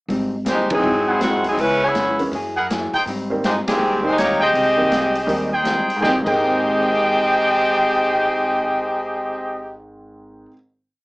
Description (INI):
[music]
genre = jazz, big band swing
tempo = 162 BPM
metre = 4/4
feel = swing 64% on 8ths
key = Ab major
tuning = A4 = 439 Hz
[part]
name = vintage hollow-body jazz guitar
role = accompaniment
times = 0.1-10.6 s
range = Ab2 to Ab4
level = -27 LUFS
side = left 1 dB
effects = none
[part]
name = upright bass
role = bass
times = 0.1-10.5 s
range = Ab1 to Ab2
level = -31 LUFS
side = equal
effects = none
[part]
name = swinging big-band drum kit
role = drums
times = 0.1-6.3 s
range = crash cymbal, hi-hat, kick drum, ride cymbal, snare drum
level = -29 LUFS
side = equal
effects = none
[part]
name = bright saxophone section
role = melody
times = 0.5-9.8 s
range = Eb3 to Eb5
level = -18 LUFS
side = equal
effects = none
[part]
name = clear concert grand piano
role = accompaniment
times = 0.7-10.5 s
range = Ab2 to Eb4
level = -26 LUFS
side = right 1 dB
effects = none
[part]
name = warm trumpet section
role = stabs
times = 1.1-9.8 s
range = Eb4 to Ab5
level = -21 LUFS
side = equal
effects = none
[sound]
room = moderate studio reverb, RT60 0.6 s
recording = small speaker sound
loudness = -16 LUFS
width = side -24 dB against mid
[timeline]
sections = 0.1-6.0 A section; 6.0-9.0 final chord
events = band accent 0.7, 3.6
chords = 0.1 Abmaj7; 0.8 Ab7b13; 1.6 Dbm7; 2.3 Gb9; 3.1 Abmaj7